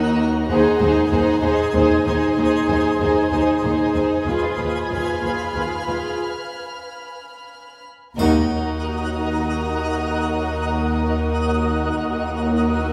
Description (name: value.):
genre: cinematic, suspense film score.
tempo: 94 BPM.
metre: 3/4.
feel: straight.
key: unclear.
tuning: A4 = 442 Hz.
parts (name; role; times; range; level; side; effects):
warm symphonic violin section; melody; 0.0-12.9 s; Bb4 to C5; -31 LUFS; equal; none.
warm symphonic violin section; second line; 0.0-12.9 s; Gb4 to Ab4; -28 LUFS; equal; none.
dark symphonic viola section; accompaniment; 0.0-12.9 s; Eb4 to F4; -26 LUFS; equal; none.
twinkling granular texture; sustained chords; 0.0-12.9 s; Eb4 to Ab5; -29 LUFS; equal; built-in reverb.
rich symphonic cello section; bass; 0.0-12.9 s; Eb2; -28 LUFS; equal; none.
warm symphonic double bass section; bass; 0.0-12.9 s; Eb2; -28 LUFS; equal; none.
warm symphonic violin section; texture; 0.0-0.1, 4.3-12.9 s; Bb5 to F6; -36 LUFS; equal; none.
triangle; percussion; 8.2-9.4 s; none; -40 LUFS; equal; none.
room: wet recital hall reverb, RT60 1.4 s.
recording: heard from further back in the room.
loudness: -20 LUFS.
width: mono.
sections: 0.0-8.2 A section; 8.2-12.9 B section.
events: break 6.2-8.2; band accent 8.2-8.8.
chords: 0.5 Ab/Eb; 4.3 Fdim/Eb; 8.2 Ebm.